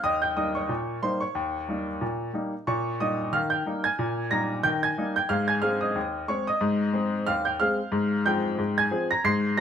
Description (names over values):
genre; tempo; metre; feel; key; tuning
ragtime piano; 91 BPM; 2/4; swing 57% on 16ths; Ab major; A4 = 440 Hz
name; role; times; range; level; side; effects
clear upright piano; solo; 0.0-9.6 s; Eb2 to C7; -24 LUFS; equal; none
room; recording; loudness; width
moderate studio reverb, RT60 0.7 s; minimal, uncompressed stereo recording; -24 LUFS; side -8 dB against mid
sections
0.0-9.6 A section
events
none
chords
0.0 Eb7; 2.7 Eb7/Bb; 5.3 Ab; 7.9 Fm/Ab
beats
| 0.04 0.70 | 1.35 2.01 | 2.67 3.33 | 3.98 4.64 | 5.30 5.96 | 6.61 7.27 | 7.93 8.59 | 9.24